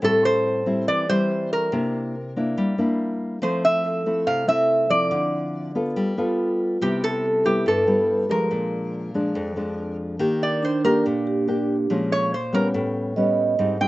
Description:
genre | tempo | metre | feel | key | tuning
bossa nova | 142 BPM | 4/4 | straight | C major, Eb major from 10.2 s | A4 = 441 Hz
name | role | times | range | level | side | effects
metal-body resonator slide guitar | melody | 0.0-13.9 s | G4 to G5 | -21 LUFS | equal | none
nylon-string guitar | accompaniment | 0.0-13.9 s | F2 to A4 | -23 LUFS | left 1 dB | none
vibraphone with medium mallets | accompaniment | 3.8-6.8, 10.6-13.7 s | D4 to Eb5 | -24 LUFS | right 3 dB | none
room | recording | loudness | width
little or no reverb | recorded outdoors, with no room sound, nothing above 8.0 kHz | -20 LUFS | side -18 dB against mid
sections
0.0-10.2 A section; 10.2-13.9 B section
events
resonator guitar played with a steel bar solo 10.2-13.9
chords
0.0 Am7; 1.7 C9; 3.4 Fmaj7; 5.1 Dm9; 6.0 G9; 6.8 Cmaj7; 8.5 Bb7; 10.2 Ebmaj7; 11.9 Bbm7; 12.7 A9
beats
| 0.02 0.44 0.87 1.29 | 1.72 2.14 2.57 2.99 | 3.42 3.84 4.26 4.69 | 5.11 5.54 5.96 6.38 | 6.81 7.23 7.66 8.08 | 8.51 8.93 9.35 9.78 | 10.20 10.62 11.05 11.47 | 11.89 12.32 12.74 13.17 | 13.59

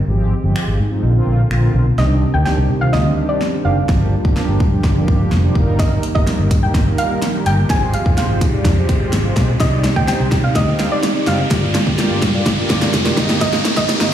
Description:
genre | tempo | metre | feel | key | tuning
dance-pop | 126 BPM | 4/4 | straight | C minor | A4 = 440 Hz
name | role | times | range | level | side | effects
mellow synth brass | accompaniment | 0.1-14.1 s | D3 to F5 | -23 LUFS | right 2 dB | chorus, sidechain pumping
vintage muted fingered electric bass | bass | 0.1-14.1 s | F1 to C3 | -17 LUFS | equal | sidechain pumping
pop drum kit | drums | 0.6-14.1 s | finger snaps, hi-hat, kick drum, snare drum | -18 LUFS | equal | none
soft round pluck | melody | 2.0-14.1 s | D5 to Ab5 | -22 LUFS | right 1 dB | chorus, ping-pong delay
string machine, cellos | sustained chords | 2.0-14.1 s | C3 to Bb4 | -24 LUFS | equal | ensemble chorus, sidechain pumping
riser | sound effects | 3.7-14.1 s | none | -26 LUFS | equal | none
room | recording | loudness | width
light reverb, digital ambience | played on a big sound system in a bare room, stone room reverb, high-pass filter | -13 LUFS | side -10 dB against mid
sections
0.0-2.0 A section; 2.0-14.1 B section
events
build-up 2.0-14.1; drum fill 2.0-14.1; filter sweep 2.0-14.1; riser 3.7-14.1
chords
0.1 Fmadd9; 1.0 Bbadd9; 2.0 Cmadd9; 3.9 Gm7; 5.6 Eb/G; 7.7 Fmadd9; 9.6 Cmadd9; 11.5 Gm7; 13.2 Eb/G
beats
| 0.08 0.56 1.03 1.51 | 1.99 2.46 2.94 3.42 | 3.89 4.37 4.84 5.32 | 5.79 6.27 6.75 7.22 | 7.70 8.18 8.65 9.13 | 9.61 10.08 10.56 11.03 | 11.51 11.99 12.46 12.94 | 13.41 13.89

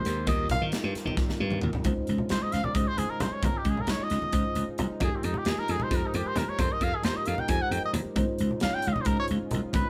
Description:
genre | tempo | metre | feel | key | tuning
electric jazz fusion | 266 BPM (eighths) | 7/8 | straight | Db lydian | A4 = 440 Hz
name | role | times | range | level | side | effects
trumpet with cup mute | melody | 0.0-9.9 s | C4 to Ab5 | -33 LUFS | equal | none
mellow tine electric piano | accompaniment | 0.0-9.9 s | G3 to Eb5 | -38 LUFS | equal | none
chorused pulse-width pad | sustained chords | 0.0-9.9 s | Db3 to Bb4 | -43 LUFS | equal | none
slap bass | bass | 0.1-9.8 s | C2 to Eb3 | -32 LUFS | equal | none
modern studio drum kit | drums | 0.1-9.8 s | hi-hat, kick drum, snare drum, toms | -34 LUFS | equal | none
congas | percussion | 0.3-9.8 s | none | -37 LUFS | equal | none
room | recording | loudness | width
moderate studio reverb, RT60 0.6 s | band playing live in one room | -28 LUFS | mono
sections
0.0-1.9 A section; 1.9-9.9 A section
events
muted trumpet solo 0.0-9.9; drum fill 1.2-1.9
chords
0.3 Eb69; 1.9 Dbmaj9; 5.0 Fm11; 8.2 Dbmaj9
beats
0.05 | 0.28 0.50 0.73 0.95 1.18 1.40 1.63 | 1.85 2.08 2.30 2.53 2.75 2.98 3.21 | 3.43 3.66 3.88 4.11 4.33 4.56 4.78 | 5.01 5.24 5.46 5.69 5.91 6.14 6.36 | 6.59 6.81 7.04 7.26 7.49 7.71 7.94 | 8.17 8.39 8.62 8.84 9.07 9.29 9.52 | 9.74

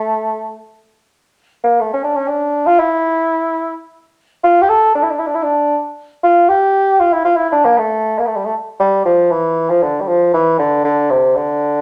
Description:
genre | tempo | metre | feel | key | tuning
arabic | 117 BPM | 3/4 | straight | A maqam hijaz | A4 = 440 Hz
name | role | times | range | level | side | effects
warm bassoon | solo | 0.0-11.8 s | C3 to A4 | -15 LUFS | equal | none
room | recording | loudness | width
wet studio reverb, RT60 0.8 s | none | -15 LUFS | mono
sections
0.0-8.8 A section; 8.8-11.8 B section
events
none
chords
none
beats
0.10 0.61 | 1.12 1.63 2.14 | 2.65 3.17 3.68 | 4.19 4.70 5.21 | 5.72 6.23 6.74 | 7.25 7.76 8.28 | 8.79 9.30 9.81 | 10.32 10.83 11.34

